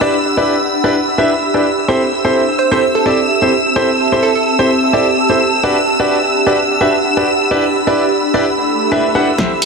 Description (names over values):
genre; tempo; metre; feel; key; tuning
piano house; 128 BPM; 4/4; swing 54% on 16ths; A dorian; A4 = 441 Hz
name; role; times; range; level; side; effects
string machine, violins; sustained chords; 0.0-9.7 s; E6; -18 LUFS; left 1 dB; ensemble chorus, sidechain pumping
clear concert grand piano; riff; 0.0-9.5 s; C4 to F#5; -15 LUFS; equal; sidechain pumping, low-pass filter, dub echo
ethereal airy pad; texture; 0.0-9.7 s; C4 to B5; -17 LUFS; right 2 dB; ensemble chorus, built-in reverb, sidechain pumping
glassy wavetable pluck; melody; 2.6-4.4 s; A4 to C5; -19 LUFS; right 6 dB; chorus, dub echo
swell and riser; sound effects; 8.6-9.7 s; none; -24 LUFS; left 4 dB; none
electronic kick drum; drums; 9.4-9.5 s; none; -20 LUFS; equal; high-pass filter on kick
punchy analog drum machine; drums; 9.4-9.7 s; hi-hat, snare drum; -16 LUFS; left 1 dB; none
room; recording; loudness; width
wet lush hall reverb, RT60 2.1 s; dense, heavily limited modern master; -11 LUFS; side -4 dB against mid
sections
0.0-9.4 A section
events
swell 8.6-9.4; drum fill 9.4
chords
0.0 Em7; 1.9 Am7; 5.4 Gmaj7